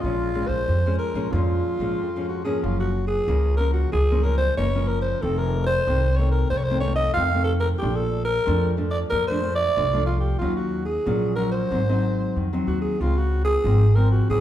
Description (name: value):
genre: samba and choro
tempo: 93 BPM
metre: 4/4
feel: straight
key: Bb minor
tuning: A4 = 440 Hz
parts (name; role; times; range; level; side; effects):
- growling alto saxophone; melody; 0.0-14.4 s; F4 to F5; -24 LUFS; equal; none
- nylon-string guitar; accompaniment; 0.0-14.4 s; F2 to F4; -26 LUFS; left 2 dB; none
- upright bass; bass; 0.0-14.4 s; F1 to F2; -23 LUFS; equal; none
room: wet large studio reverb, RT60 1.0 s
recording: band playing live in one room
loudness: -20 LUFS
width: side -12 dB against mid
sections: 0.0-2.6 A section; 2.6-14.4 B section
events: break 2.0-2.6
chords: 0.0 Bbm7; 2.6 Gbmaj7; 5.2 F7; 7.8 Bbmaj7; 10.4 Ebm9; 11.7 Ab7; 13.0 Dbmaj7